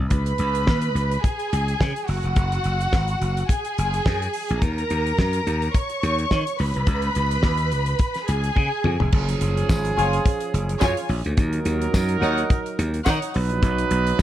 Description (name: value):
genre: disco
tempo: 106 BPM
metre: 4/4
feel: swing 56% on 16ths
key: F# major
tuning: A4 = 441 Hz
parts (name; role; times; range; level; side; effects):
- slap bass; bass; 0.0-14.2 s; E#1 to D#3; -23 LUFS; equal; none
- clear studio string section; second line; 0.1-13.3 s; D#4 to C#6; -25 LUFS; equal; none
- damped 70s drum kit; drums; 0.1-14.2 s; crash cymbal, hi-hat, kick drum, snare drum, toms; -23 LUFS; equal; none
- warm horn section; stabs; 9.1-14.2 s; E#3 to B4; -26 LUFS; right 4 dB; none
- tambourine; percussion; 9.7-14.2 s; none; -38 LUFS; left 5 dB; none
room: studio ambience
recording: none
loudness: -20 LUFS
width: side -12 dB against mid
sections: 0.1-9.1 A section; 9.1-14.2 B section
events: drum fill 8.6-9.1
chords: 0.1 C#5; 2.1 F#sus2; 4.6 D#7(no3); 6.6 C#7(no3); 9.1 F#maj7sus2; 11.4 D#m; 13.3 B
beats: | 0.11 0.67 1.24 1.80 | 2.37 2.93 3.49 4.06 | 4.62 5.18 5.75 6.31 | 6.87 7.44 8.00 8.56 | 9.13 9.69 10.25 10.81 | 11.38 11.94 12.50 13.06 | 13.63 14.19